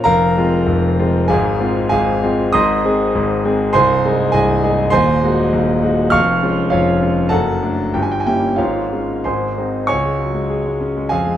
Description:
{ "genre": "classical, virtuoso piano study", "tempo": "87-102 BPM", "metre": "2/4", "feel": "rubato", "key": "F minor, Db major from 4.9 s", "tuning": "A4 = 440 Hz", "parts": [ { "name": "clear concert grand piano", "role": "solo", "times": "0.0-11.4 s", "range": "C1 to F6", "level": "-14 LUFS", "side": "equal", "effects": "none" } ], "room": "moderate recital hall reverb, RT60 1.5 s", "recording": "close, detailed microphones", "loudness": "-14 LUFS", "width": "side -11 dB against mid", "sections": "0.1-9.9 A section; 9.9-11.4 B section", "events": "none", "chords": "0.1 Fm; 1.3 Fm/Ab; 2.5 Ab; 3.7 Ab/C; 4.9 Ab7/Eb; 6.1 Db/F; 7.3 D/F#; 7.9 Gdim7; 8.6 Db/Ab; 9.3 Ab; 9.9 Db5", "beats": "| 0.06 0.69 | 1.30 1.91 | 2.54 3.14 | 3.73 4.33 | 4.92 5.51 | 6.13 6.73 | 7.32 7.94 | 8.58 9.26 | 9.90 10.51 | 11.12" }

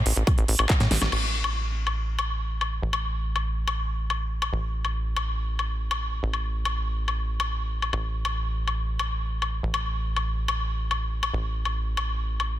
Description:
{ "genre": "psychedelic trance", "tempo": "141 BPM", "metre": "4/4", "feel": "straight", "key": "unclear", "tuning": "A4 = 440 Hz", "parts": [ { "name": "tight sequencer bass", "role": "bass", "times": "0.0-12.6 s", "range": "A1 to A2", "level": "-27 LUFS", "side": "equal", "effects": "tube saturation" }, { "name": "big-room dance drum kit", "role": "drums", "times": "0.1-12.5 s", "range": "crash cymbal, handclaps, hi-hat, snare drum, woodblock", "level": "-28 LUFS", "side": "left 3 dB", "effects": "none" }, { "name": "electronic kick drum", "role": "drums", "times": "0.3-0.8 s", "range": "none", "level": "-23 LUFS", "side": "equal", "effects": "none" } ], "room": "light reverb, digital ambience", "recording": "dense, heavily limited modern master", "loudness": "-24 LUFS", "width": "side -13 dB against mid", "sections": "0.0-1.1 A section; 1.1-12.6 B section", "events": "drop 0.0-1.1; drum fill 0.8-1.1; band accent 1.0", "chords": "none", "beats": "0.27 0.70 | 1.12 1.55 1.97 2.40 | 2.83 3.25 3.68 4.10 | 4.53 4.95 5.38 5.80 | 6.23 6.65 7.08 7.50 | 7.93 8.36 8.78 9.21 | 9.63 10.06 10.48 10.91 | 11.34 11.76 12.19" }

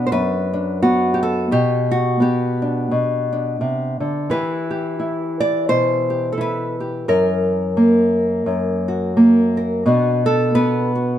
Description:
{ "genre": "folk, solo fingerstyle acoustic guitar", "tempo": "86 BPM", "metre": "4/4", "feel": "swing 58% on 8ths", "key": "E minor", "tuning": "A4 = 439 Hz", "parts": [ { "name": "nylon-string guitar", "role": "solo", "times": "0.0-11.2 s", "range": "F#2 to D5", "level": "-16 LUFS", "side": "equal", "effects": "none" } ], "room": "moderate stone room reverb, RT60 1.3 s", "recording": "band playing live in one room", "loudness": "-16 LUFS", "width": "side -11 dB against mid", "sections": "0.0-11.2 A section", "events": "none", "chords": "0.0 Bm; 1.5 G/B; 4.3 Em; 7.1 F#7; 9.9 Bm", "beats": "0.13 0.82 | 1.52 2.21 2.91 3.60 | 4.30 4.99 5.69 6.38 | 7.08 7.77 8.47 9.16 | 9.86 10.55" }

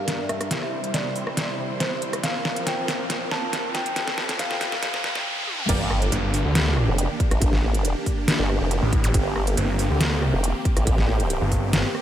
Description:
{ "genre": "heavy wobble dubstep", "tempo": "139 BPM", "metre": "4/4", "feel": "half-time", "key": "G dorian", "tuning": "A4 = 440 Hz", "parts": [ { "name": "felt-muted upright piano", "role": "melody", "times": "0.0-5.2 s", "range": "C5 to A5", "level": "-32 LUFS", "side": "left 1 dB", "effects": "tape echo" }, { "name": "supersaw chords", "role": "sustained chords", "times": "0.0-12.0 s", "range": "F2 to C5", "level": "-29 LUFS", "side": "right 1 dB", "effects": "phaser, sidechain pumping, low-pass filter" }, { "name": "riser, impact and zap", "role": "sound effects", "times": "0.0-9.1 s", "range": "none", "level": "-35 LUFS", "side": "equal", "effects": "none" }, { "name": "dubstep drum kit", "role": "drums", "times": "0.1-12.0 s", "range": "crash cymbal, hi-hat, rim click, snare drum, toms", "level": "-26 LUFS", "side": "equal", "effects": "none" }, { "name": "orchestra-hit-like synth stab", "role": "stabs", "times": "5.7-5.9 s", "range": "Bb3 to D5", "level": "-36 LUFS", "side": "right 2 dB", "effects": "none" }, { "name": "formant-sweep wobble bass", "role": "bass", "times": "5.7-11.4 s", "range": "F1 to A1", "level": "-22 LUFS", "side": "equal", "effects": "chorus, overdrive" }, { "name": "electronic kick drum", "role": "drums", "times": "5.7-11.6 s", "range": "none", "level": "-23 LUFS", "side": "equal", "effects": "none" }, { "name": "snarling distorted saw bass", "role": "bass", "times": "6.1-11.8 s", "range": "G1 to D2", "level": "-22 LUFS", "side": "equal", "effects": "distortion, overdrive" } ], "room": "moderate huge ambient reverb, RT60 7.6 s", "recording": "dreamy mix soaked in reverb, high-pass filter", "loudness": "-21 LUFS", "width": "side -11 dB against mid", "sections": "0.0-5.7 A section; 5.7-12.0 B section", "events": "build-up 0.0-5.7; drum fill 0.0-5.3, 5.5; filter sweep on supersaw synth 0.0-5.7; filter sweep 0.0-5.7; drop 5.7-12.0; impact 5.7-7.4", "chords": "0.0 Gm; 0.5 C; 2.2 Bbsus2; 4.0 F; 5.7 Gm", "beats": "0.08 | 0.51 0.94 1.37 1.80 | 2.24 2.67 3.10 3.53 | 3.96 4.39 4.83 5.26 | 5.69 6.12 6.55 6.98 | 7.42 7.85 8.28 8.71 | 9.14 9.57 10.01 10.44 | 10.87 11.30 11.73" }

